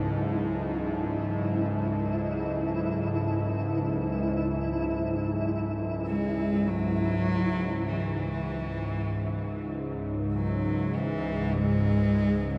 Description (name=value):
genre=dark ambient drone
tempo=free time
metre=none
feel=none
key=unclear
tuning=A4 = 436 Hz
part: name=deep dark ambient pad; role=sustained chords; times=0.0-7.9 s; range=F#3 to A5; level=-39 LUFS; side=equal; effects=chorus, built-in reverb
part: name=bowed-like drone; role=drone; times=0.0-12.6 s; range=C#2 to G#2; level=-31 LUFS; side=equal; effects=built-in reverb
part: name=flickering grainy texture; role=texture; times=0.0-12.6 s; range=E4 to E5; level=-36 LUFS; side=equal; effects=built-in reverb
part: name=warm cello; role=melody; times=6.1-12.6 s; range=E3 to G#3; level=-32 LUFS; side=equal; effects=diffuse ambient delay
room=wet huge ambient reverb, RT60 7.6 s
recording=dark, warm production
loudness=-29 LUFS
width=mono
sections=0.0-7.9 A section; 7.9-12.6 B section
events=none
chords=0.0 F#m7; 7.9 N.C.